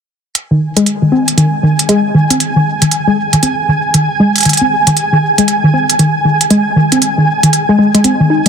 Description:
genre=IDM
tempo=117 BPM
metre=4/4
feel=swing 62% on 16ths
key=unclear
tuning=A4 = 440 Hz
part: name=flickering grainy texture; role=texture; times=1.2-8.5 s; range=Ab5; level=-15 LUFS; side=right 2 dB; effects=built-in reverb
part: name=electronic hi-hat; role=drums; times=0.4-8.5 s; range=none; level=-13 LUFS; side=right 2 dB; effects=none
part: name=warbly dusty pluck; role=arpeggios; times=0.5-8.5 s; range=Eb3 to Eb4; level=-11 LUFS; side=left 1 dB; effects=chorus, cassette tape, dub echo
room=moderate huge ambient reverb, RT60 4.3 s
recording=dense, heavily limited modern master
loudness=-9 LUFS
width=side -7 dB against mid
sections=0.4-8.5 A section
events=none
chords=0.4 Ebsus4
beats=| 0.35 0.86 1.38 1.89 | 2.40 2.92 3.43 3.94 | 4.45 4.97 5.48 5.99 | 6.50 7.02 7.53 8.04

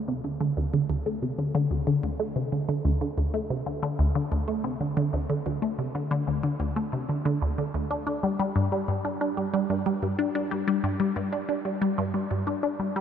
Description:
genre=ambient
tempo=92 BPM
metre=4/4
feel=straight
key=unclear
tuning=A4 = 441 Hz
part: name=resonant blip pluck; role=solo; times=0.0-13.0 s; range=D2 to D4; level=-25 LUFS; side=equal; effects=chorus, phaser, tape echo
room=moderate huge ambient reverb, RT60 7.9 s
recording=dreamy mix soaked in reverb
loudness=-25 LUFS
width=side -8 dB against mid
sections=0.0-13.0 A section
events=none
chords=none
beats=| 0.08 0.73 1.38 2.03 | 2.69 3.34 3.99 4.64 | 5.29 5.95 6.60 7.25 | 7.90 8.56 9.21 9.86 | 10.51 11.16 11.82 12.47

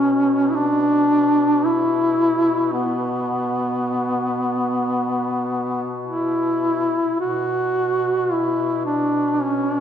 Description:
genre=caucasian folk, Caucasian lament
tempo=free time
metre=none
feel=none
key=B minor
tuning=A4 = 442 Hz
part: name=mellow duduk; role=melody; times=0.0-9.8 s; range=B3 to F#4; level=-18 LUFS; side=equal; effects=none
part: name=warm duduk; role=drone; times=0.0-9.8 s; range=B2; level=-28 LUFS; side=left 1 dB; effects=none
room=wet concert hall reverb, RT60 1.8 s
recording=recorded in a church or concert hall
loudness=-18 LUFS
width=side -9 dB against mid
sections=0.0-7.2 A section; 7.2-9.8 B section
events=none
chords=none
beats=free time

